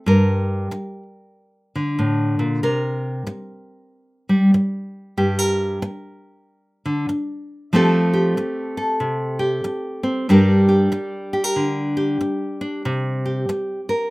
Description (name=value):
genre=folk, solo fingerstyle acoustic guitar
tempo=94 BPM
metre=4/4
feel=swing 62% on 8ths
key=G minor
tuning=A4 = 439 Hz
part: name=nylon-string guitar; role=solo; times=0.0-14.1 s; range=G2 to Bb4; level=-18 LUFS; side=equal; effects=none
room=moderate small room reverb, RT60 0.5 s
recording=rough home demo mix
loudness=-18 LUFS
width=side -22 dB against mid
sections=0.0-7.7 A section; 7.7-14.1 B section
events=none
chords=0.1 Gm; 2.6 C5; 5.2 Gm; 7.7 Fadd9; 10.3 Gm; 12.8 C7(no3)